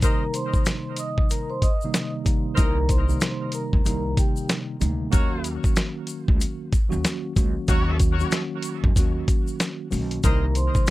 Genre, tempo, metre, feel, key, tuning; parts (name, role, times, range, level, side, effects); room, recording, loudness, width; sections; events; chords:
hip hop, boom-bap hip-hop; 94 BPM; 4/4; swing 60% on 16ths; C minor; A4 = 440 Hz
vibraphone with medium mallets; melody; 0.0-4.5, 10.2-10.9 s; G4 to Eb6; -31 LUFS; equal; ping-pong delay
mellow tine electric piano; accompaniment; 0.0-10.9 s; C3 to Gb4; -28 LUFS; right 1 dB; medium stereo tremolo
warm horn section; stabs; 0.0-10.4 s; Gb4 to Eb5; -32 LUFS; left 2 dB; ping-pong delay
dusty soul sampler-style drum kit; drums; 0.0-10.9 s; hi-hat, kick drum, snare drum; -22 LUFS; equal
tube shaker; percussion; 0.0-10.9 s; -38 LUFS; left 8 dB
upright bass; bass; 2.6-10.7 s; B1 to F2; -25 LUFS; equal
little or no reverb; -21 LUFS; side -18 dB against mid
0.0-10.9 A section
break 0.0-2.6
0.0 Cm7; 5.1 Ebm7; 10.2 Cm7